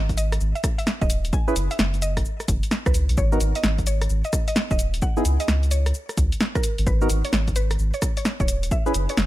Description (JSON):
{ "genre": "UK garage, two-step garage", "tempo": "130 BPM", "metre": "4/4", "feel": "swing 64% on 16ths", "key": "G# minor", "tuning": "A4 = 442 Hz", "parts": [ { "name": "soft dub sub bass", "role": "bass", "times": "0.0-9.3 s", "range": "D#1 to C#2", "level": "-22 LUFS", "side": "equal", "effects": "none" }, { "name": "electronic kick drum", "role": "drums", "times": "0.1-8.8 s", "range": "none", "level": "-24 LUFS", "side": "equal", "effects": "none" }, { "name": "punchy analog drum machine", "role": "drums", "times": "0.1-9.3 s", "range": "hi-hat, rim click, shaker, snare drum", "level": "-26 LUFS", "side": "equal", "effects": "none" }, { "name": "mallet-like synth pluck", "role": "melody", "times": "0.2-9.2 s", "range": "A#4 to G#5", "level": "-31 LUFS", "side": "right 1 dB", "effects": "chorus, cassette tape, digital delay" }, { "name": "percussive organ stab", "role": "stabs", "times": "1.5-8.9 s", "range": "B3 to B4", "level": "-26 LUFS", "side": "right 1 dB", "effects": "chorus, ping-pong delay" } ], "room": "little or no reverb", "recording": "none", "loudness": "-20 LUFS", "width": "side -16 dB against mid", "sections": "0.0-9.3 A section", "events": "none", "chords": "0.0 G#5; 1.3 F#5; 3.2 G#5; 5.0 N.C.; 6.9 G#m; 8.7 F#9sus4", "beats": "0.41 0.87 | 1.33 1.79 2.25 2.71 | 3.18 3.64 4.10 4.56 | 5.02 5.48 5.95 6.41 | 6.87 7.33 7.79 8.25 | 8.71 9.18" }